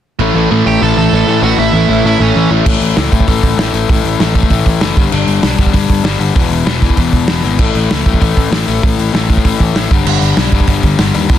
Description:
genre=punk rock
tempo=194 BPM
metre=4/4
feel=straight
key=unclear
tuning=A4 = 442 Hz
part: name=overdriven electric guitar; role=riff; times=0.2-11.4 s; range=E2 to A3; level=-14 LUFS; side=left 8 dB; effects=none
part: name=overdriven electric guitar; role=riff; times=0.2-2.7 s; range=A2 to A3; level=-15 LUFS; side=right 16 dB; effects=none
part: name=picked electric bass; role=bass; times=0.2-11.4 s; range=E1 to A2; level=-16 LUFS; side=right 1 dB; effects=none
part: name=overdriven electric guitar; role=melody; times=0.7-2.5 s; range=C#4 to A5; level=-15 LUFS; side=right 7 dB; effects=none
part: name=loose indie drum kit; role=drums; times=2.7-11.4 s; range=crash cymbal, hi-hat, kick drum, snare drum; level=-13 LUFS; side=right 1 dB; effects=none
room=light reverb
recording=dense, heavily limited modern master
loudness=-9 LUFS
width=side -11 dB against mid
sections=0.2-2.7 A section; 2.7-11.4 B section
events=none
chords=0.2 A; 2.7 A5; 5.0 G5; 6.4 E; 7.6 A5; 9.9 G5

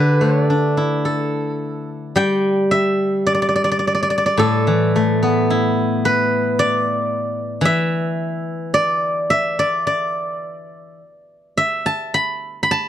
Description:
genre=chinese traditional, Chinese solo plucked strings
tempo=54 BPM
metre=2/4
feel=rubato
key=D zhi mode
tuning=A4 = 439 Hz
part: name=steel-string zither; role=solo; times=0.0-12.9 s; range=A2 to B5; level=-16 LUFS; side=equal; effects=none
room=little or no reverb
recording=dry, close 1970s-style studio recording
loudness=-16 LUFS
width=side -10 dB against mid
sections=0.0-2.2 A section; 2.2-12.9 B section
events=none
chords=none

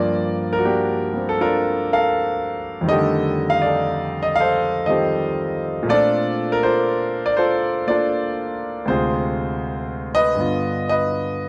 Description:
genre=solo jazz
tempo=80 BPM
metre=4/4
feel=swing 68% on 8ths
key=Bb major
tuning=A4 = 439 Hz
part: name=clear concert grand piano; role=solo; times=0.0-11.5 s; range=D2 to F5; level=-20 LUFS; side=equal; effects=none
room=moderate large studio reverb, RT60 0.9 s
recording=none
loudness=-21 LUFS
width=mono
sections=0.0-11.5 A section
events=none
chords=0.0 Gm9; 2.9 F13; 5.9 Bbmaj9; 8.9 Dm7b5; 10.4 G7

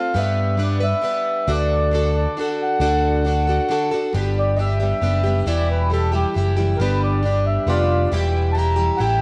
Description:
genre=folk rock and heartland rock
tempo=136 BPM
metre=3/4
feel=straight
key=G major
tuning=A4 = 443 Hz
part: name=mellow accordion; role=melody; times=0.0-9.2 s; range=F4 to Bb5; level=-25 LUFS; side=equal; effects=tape echo
part: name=picked plugged-in twelve-string acoustic guitar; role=accompaniment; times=0.0-9.2 s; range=E2 to B4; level=-25 LUFS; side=equal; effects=none
part: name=picked electric bass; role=bass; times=0.1-9.2 s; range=E1 to G2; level=-22 LUFS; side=equal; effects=none
room=moderate echo chamber reverb, RT60 1.9 s, studio reverb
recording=none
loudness=-20 LUFS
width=mono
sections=0.0-4.1 A section; 4.1-9.2 B section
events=accordion solo 4.1-9.2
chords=0.2 G; 1.5 D; 4.1 G; 5.5 Em; 6.8 G; 8.1 Em

